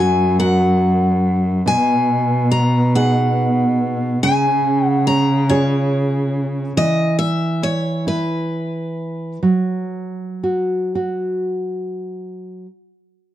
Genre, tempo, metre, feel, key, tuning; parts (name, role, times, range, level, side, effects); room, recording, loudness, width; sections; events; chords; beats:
acoustic folk-pop ballad; 46 BPM (dotted quarters); 6/8; uneven beats; A4 = 439 Hz
picked steel-string acoustic guitar; melody; 0.0-9.4 s; B4 to A#5; -20 LUFS; left 2 dB
nylon-string guitar; accompaniment; 0.0-12.7 s; B2 to A#4; -20 LUFS; right 2 dB
warm cello; bass; 0.0-6.7 s; F#2 to C#3; -18 LUFS; equal
small room ambience; dry, close 1970s-style studio recording; -16 LUFS; side -12 dB against mid
0.0-12.7 A section
slowing down 6.8-12.7
0.0 F#; 1.7 B6; 4.2 C#; 6.8 N.C.
0.38 | 1.66 2.94 | 4.22 5.49 | 6.76 8.05 | 9.43 10.96